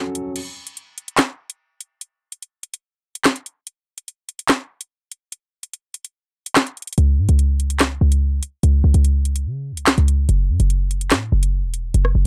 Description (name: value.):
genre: hip hop, drill.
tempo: 145 BPM.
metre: 4/4.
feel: half-time.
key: unclear.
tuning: A4 = 440 Hz.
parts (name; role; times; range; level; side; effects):
drill drum kit; drums; 0.2-12.1 s; crash cymbal, handclaps, hi-hat, rim click, snare drum; -21 LUFS; equal; none.
short 808-style bass; bass; 7.0-12.2 s; E1 to C#3; -18 LUFS; equal; none.
room: little or no reverb.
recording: dark, warm production.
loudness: -19 LUFS.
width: mono.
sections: 0.4-12.3 A section.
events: break 0.0-0.4; kick muted 0.4-7.0.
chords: none.